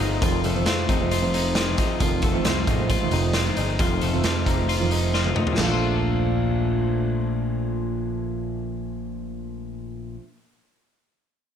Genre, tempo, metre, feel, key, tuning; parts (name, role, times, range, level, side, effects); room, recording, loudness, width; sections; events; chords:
jangly indie pop; 134 BPM; 4/4; straight; Bb major; A4 = 439 Hz
picked steel-string acoustic guitar; accompaniment; 0.0-10.3 s; F2 to F4; -27 LUFS; right 8 dB
twelve-string electric guitar; arpeggios; 0.0-10.4 s; F2 to F4; -26 LUFS; left 8 dB; digital delay
picked electric bass; bass; 0.0-10.2 s; F1 to F2; -28 LUFS; equal
raw garage drum kit; drums; 0.0-5.7 s; crash cymbal, hi-hat, kick drum, snare drum, toms; -25 LUFS; equal
light reverb; -20 LUFS; side -8 dB against mid
0.0-5.6 A section; 5.6-9.2 B section
drum fill 5.1-5.6
0.0 F7; 5.6 Bbmaj7